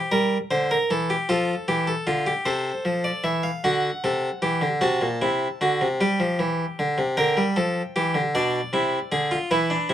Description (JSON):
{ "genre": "classical, baroque-style 3-part fugue for harpsichord", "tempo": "51 BPM (dotted quarters)", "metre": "12/8", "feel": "straight", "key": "unclear", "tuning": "A4 = 440 Hz", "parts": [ { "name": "harpsichord", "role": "solo", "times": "0.0-9.9 s", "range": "Bb2 to A5", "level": "-21 LUFS", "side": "equal", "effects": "none" } ], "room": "light reverb", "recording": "dark, warm production", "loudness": "-21 LUFS", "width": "side -11 dB against mid", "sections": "0.0-3.6 A section; 3.6-9.9 B section", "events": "none", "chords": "0.0 C7; 1.3 F; 3.6 D7; 6.0 G5; 8.3 E7(no3)/B", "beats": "0.11 1.28 2.46 | 3.64 4.82 6.00 7.17 | 8.34 9.50" }